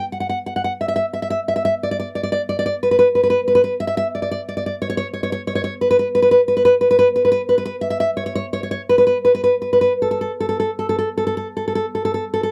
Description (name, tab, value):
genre	romantic piece for solo classical guitar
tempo	50-61 BPM (dotted quarters)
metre	6/8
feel	rubato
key	B minor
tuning	A4 = 440 Hz
part	nylon-string guitar	solo	0.0-12.5 s	A4 to F#5	-19 LUFS	equal	none
room	light reverb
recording	dry, close 1970s-style studio recording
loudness	-19 LUFS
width	mono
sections	0.0-12.2 A section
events	none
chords	none